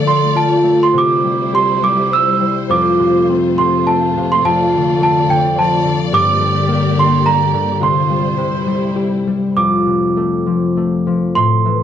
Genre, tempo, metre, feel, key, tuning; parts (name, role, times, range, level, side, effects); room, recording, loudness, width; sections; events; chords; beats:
children's music, lullaby; 99-109 BPM; 3/4; rubato; F major; A4 = 440 Hz
concert harp; accompaniment; 0.0-11.8 s; F2 to A4; -15 LUFS; left 2 dB
warm studio string section; sustained chords; 0.0-9.6 s; F2 to D5; -23 LUFS; equal
celesta; melody; 0.1-11.8 s; G5 to E6; -16 LUFS; right 4 dB
moderate small room reverb, RT60 0.5 s; worn, warbling old tape, cassette tape, warbly pitch drift; -12 LUFS; side -9 dB against mid
0.0-9.6 A section; 9.6-11.8 B section
0.0 Dm; 0.9 C; 2.7 F; 4.4 Dm/F; 6.1 Gm; 7.8 Csus4; 8.4 C; 9.6 F
0.36 | 0.94 1.52 2.11 | 2.70 3.28 3.86 | 4.43 5.00 5.56 | 6.12 6.67 7.23 | 7.80 8.37 8.96 | 9.55 10.15 10.75 | 11.35